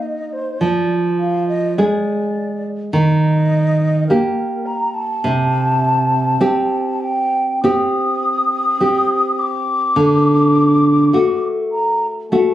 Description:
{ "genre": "romantic duo for flute and classical guitar", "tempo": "52 BPM", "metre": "4/4", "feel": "rubato", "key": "unclear", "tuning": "A4 = 438 Hz", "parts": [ { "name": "mellow hollow concert flute", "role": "melody", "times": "0.0-12.5 s", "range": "Bb4 to Eb6", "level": "-19 LUFS", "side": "left 1 dB", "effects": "none" }, { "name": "nylon-string guitar", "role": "accompaniment", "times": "0.0-12.5 s", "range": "C3 to Ab4", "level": "-16 LUFS", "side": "right 1 dB", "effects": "none" } ], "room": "light reverb", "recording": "recorded on a phone in the room, club reverb, compression", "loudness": "-14 LUFS", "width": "side -13 dB against mid", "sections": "0.0-12.5 A section", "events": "none", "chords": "0.0 Eb5; 0.6 Fm6; 2.9 Eb; 5.2 Cm; 10.0 D", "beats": "| 0.62 1.78 2.94 4.09 | 5.24 6.40 7.63 8.80 | 9.96 11.13 12.32" }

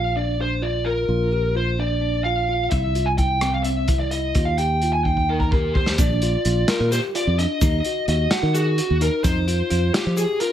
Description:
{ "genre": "progressive instrumental, band music in an uneven meter", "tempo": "258 BPM (eighths)", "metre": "7/8", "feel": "straight", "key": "Bb mixolydian", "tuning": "A4 = 440 Hz", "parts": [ { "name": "smooth overdriven lead guitar", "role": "melody", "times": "0.0-10.5 s", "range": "Gb4 to C6", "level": "-24 LUFS", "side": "equal", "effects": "none" }, { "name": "bell-like tine electric piano", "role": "arpeggios", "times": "0.0-10.5 s", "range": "C4 to Ab4", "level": "-27 LUFS", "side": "right 1 dB", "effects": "fast stereo tremolo, ping-pong delay" }, { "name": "fingered electric bass", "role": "bass", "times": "0.0-10.2 s", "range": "Bb1 to F3", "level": "-22 LUFS", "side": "equal", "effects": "none" }, { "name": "crunchy breakbeat drum kit", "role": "drums", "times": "2.7-10.5 s", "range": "hi-hat, kick drum, rim click, snare drum", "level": "-23 LUFS", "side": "equal", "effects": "none" }, { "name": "egg shaker", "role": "percussion", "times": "6.0-10.4 s", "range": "none", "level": "-35 LUFS", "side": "left 8 dB", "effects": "none" } ], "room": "small room ambience", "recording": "none", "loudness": "-18 LUFS", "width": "side -10 dB against mid", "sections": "0.0-6.0 A section; 6.0-10.5 B section", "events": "drum fill 5.1-6.0", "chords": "0.0 Bb; 2.7 C; 4.4 Eb; 6.0 Bb; 7.6 Ebm; 9.2 F5", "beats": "0.15 0.39 0.62 0.85 | 1.08 1.32 1.55 1.78 2.02 2.25 2.48 | 2.72 2.95 3.19 3.42 3.65 3.89 4.12 | 4.35 4.59 4.82 5.05 5.29 5.52 5.75 | 5.99 6.22 6.45 6.68 6.92 7.15 7.38 | 7.62 7.85 8.08 8.31 8.54 8.78 9.01 | 9.24 9.48 9.71 9.94 10.17 10.41" }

